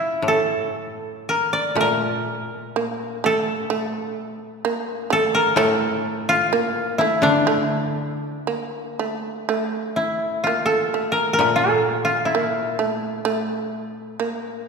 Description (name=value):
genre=japanese traditional, Japanese chamber music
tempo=58-65 BPM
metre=2/4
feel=rubato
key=unclear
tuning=A4 = 440 Hz
part: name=koto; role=melody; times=0.0-14.5 s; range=D4 to D5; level=-20 LUFS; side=equal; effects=none
part: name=koto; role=accompaniment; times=0.2-14.2 s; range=A2 to D3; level=-27 LUFS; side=left 3 dB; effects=none
part: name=shamisen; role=second line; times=1.8-14.7 s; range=A3 to Bb3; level=-25 LUFS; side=right 4 dB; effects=none
room=wet concert hall reverb, RT60 2.5 s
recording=recorded in a church or concert hall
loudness=-19 LUFS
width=side -5 dB against mid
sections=0.0-9.5 A section; 9.5-14.7 B section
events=none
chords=none